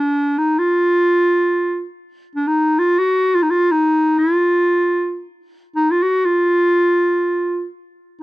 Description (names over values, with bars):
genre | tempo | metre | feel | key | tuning
Turkish makam ensemble | free time | none | none | unclear | A4 = 440 Hz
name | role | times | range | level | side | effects
clear clarinet | solo | 0.0-7.7 s | D4-42c to Gb4 | -14 LUFS | equal | none
room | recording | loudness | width
small room ambience | dry, close 1970s-style studio recording | -14 LUFS | side -18 dB against mid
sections
0.0-8.2 A section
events
none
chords
none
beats
free time